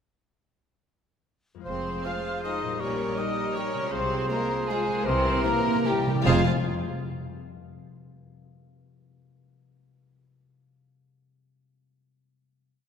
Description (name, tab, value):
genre	classical, orchestral ballroom waltz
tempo	144-172 BPM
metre	3/4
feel	rubato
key	F minor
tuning	A4 = 441 Hz
part	concert harp	arpeggios	1.5-6.5 s	F2 to F5	-35 LUFS	left 6 dB	none
part	clear oboe	second line	1.6-6.4 s	Bb4 to C5	-36 LUFS	right 1 dB	none
part	rich chamber violin section	melody	1.7-6.5 s	G4 to F5	-34 LUFS	left 3 dB	none
part	mellow clarinet	second line	1.7-6.4 s	G4 to Ab4	-35 LUFS	left 1 dB	none
part	mellow hollow concert flute	second line	1.7-6.5 s	F5 to F6	-33 LUFS	left 2 dB	none
part	mellow bassoon	accompaniment	1.7-6.4 s	E3 to G3	-36 LUFS	right 3 dB	none
part	rich chamber viola section	accompaniment	1.7-6.5 s	G3 to F4	-32 LUFS	right 2 dB	none
part	warm chamber cello section	bass	1.7-6.5 s	F2 to C3	-35 LUFS	right 2 dB	none
part	warm chamber double bass section	bass	1.7-6.5 s	F1 to C2	-32 LUFS	right 3 dB	none
part	warm French horn section	sustained chords	2.0-6.4 s	G3 to G4	-36 LUFS	left 2 dB	none
part	warm chamber violin section	second line	2.1-6.5 s	E4 to C5	-38 LUFS	left 2 dB	none
part	timpani	percussion	5.1-6.4 s	F2 to C3	-31 LUFS	equal	none
room	wet concert hall reverb, RT60 2.2 s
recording	none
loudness	-24 LUFS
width	side -7 dB against mid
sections	1.7-6.3 A section; 6.3-7.5 final chord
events	timpani fill 5.1-6.3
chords	1.7 Fm; 2.8 Gdim/Bb; 3.9 Fm/C; 5.1 C7; 6.3 Fm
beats	| 1.66 2.04 2.44 | 2.80 3.17 3.56 | 3.92 4.30 4.70 | 5.07 5.45 5.86 | 6.26